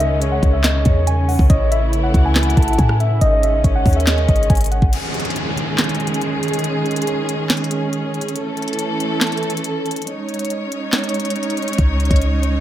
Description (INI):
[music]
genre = hip hop, trap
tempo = 140 BPM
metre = 4/4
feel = half-time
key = C# minor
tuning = A4 = 440 Hz
[part]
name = muted felt-like synth keys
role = melody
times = 0.0-4.9 s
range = D#5 to A5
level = -24 LUFS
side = equal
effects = chorus, low-pass filter, diffuse ambient delay
[part]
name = soft octave-layered synth lead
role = second line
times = 0.0-4.5 s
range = C#5 to F#5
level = -24 LUFS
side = left 2 dB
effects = chorus, diffuse ambient delay
[part]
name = warm studio string section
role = sustained chords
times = 0.0-12.6 s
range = C#3 to C#5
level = -21 LUFS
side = right 2 dB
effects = none
[part]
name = clean 808-style bass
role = bass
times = 0.0-4.9, 11.8-12.6 s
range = G#1 to A2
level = -16 LUFS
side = equal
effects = none
[part]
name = trap drum kit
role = drums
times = 0.0-12.5 s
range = crash cymbal, handclaps, hi-hat, kick drum, rim click, snare drum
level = -19 LUFS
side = equal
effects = none
[part]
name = downlifter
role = sound effects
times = 4.9-8.4 s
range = none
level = -27 LUFS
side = equal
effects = none
[sound]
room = moderate plate reverb, RT60 1.0 s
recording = dreamy mix soaked in reverb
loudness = -15 LUFS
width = side -12 dB against mid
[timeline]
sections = 0.0-4.9 A section; 4.9-12.6 B section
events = break 4.9-11.8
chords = 0.0 C#sus2; 1.5 A; 3.2 G#sus4; 4.9 C#sus2; 8.4 A; 10.1 G#sus4; 11.8 C#sus2